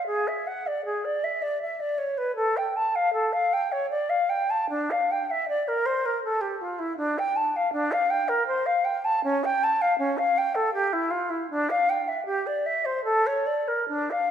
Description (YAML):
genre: classical, baroque-style fantasia for unaccompanied flute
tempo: 79 BPM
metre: 3/4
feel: rubato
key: unclear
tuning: A4 = 441 Hz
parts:
  - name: concert flute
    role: solo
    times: 0.0-14.3 s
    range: C#4 to A5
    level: -23 LUFS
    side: equal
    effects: none
room: wet concert hall reverb, RT60 1.8 s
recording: minimal, uncompressed stereo recording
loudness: -23 LUFS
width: side -9 dB against mid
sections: 0.0-14.3 A section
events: none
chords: none